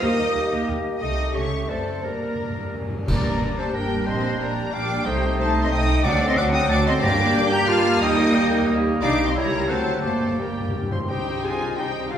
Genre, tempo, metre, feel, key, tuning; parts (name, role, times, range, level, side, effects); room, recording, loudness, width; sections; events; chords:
classical, dramatic, fast romantic movement for symphony orchestra; 180 BPM; 3/4; rubato; G minor; A4 = 440 Hz
warm symphonic violin section; melody; 0.0-12.2 s; F5 to G6; -30 LUFS; left 3 dB
hollow concert flute; second line; 0.0-12.2 s; Bb4 to C6; -30 LUFS; left 2 dB
warm clarinet; second line; 0.0-12.2 s; Bb3 to C5; -30 LUFS; equal
warm oboe; second line; 0.0-12.2 s; Eb4 to Bb5; -31 LUFS; right 2 dB
warm symphonic violin section; second line; 0.0-12.2 s; Eb4 to G5; -32 LUFS; left 3 dB
dark bassoon; accompaniment; 0.0-12.2 s; F#3 to Bb3; -31 LUFS; right 2 dB
rich chamber viola section; accompaniment; 0.0-12.2 s; Eb3 to Bb4; -30 LUFS; right 2 dB
mellow French horn section; sustained chords; 0.0-12.2 s; Eb3 to C5; -31 LUFS; left 1 dB
concert harp; arpeggios; 0.0-12.2 s; F#2 to G5; -32 LUFS; left 5 dB
rich symphonic cello section; bass; 0.0-12.2 s; G3 to G4; -29 LUFS; right 2 dB
warm symphonic double bass section; bass; 0.0-12.2 s; G1 to G2; -28 LUFS; right 2 dB
cymbal swell, clash cymbals and concert bass drum; percussion; 1.0-3.7 s; -30 LUFS; equal
timpani; percussion; 2.0-3.5, 6.1-7.5, 10.0-11.1 s; G2 to D3; -31 LUFS; equal
wet recital hall reverb, RT60 1.3 s; recorded in a church or concert hall; -19 LUFS; side -9 dB against mid
0.0-3.1 A section; 3.1-11.1 B section; 11.1-12.2 C section
timpani fill 2.0-3.1, 10.0-11.1; band accent 3.1-3.4
0.0 Eb; 1.0 Am7b5/C; 1.3 A7/C#; 1.7 D7/F#; 2.0 Gm; 4.1 Gm/Bb; 5.1 Am7b5/C; 6.1 D7; 7.0 Gm; 8.0 Eb; 9.0 Ebmaj13/C; 9.4 C#dim7; 9.7 D7; 10.0 Gm; 11.1 Cm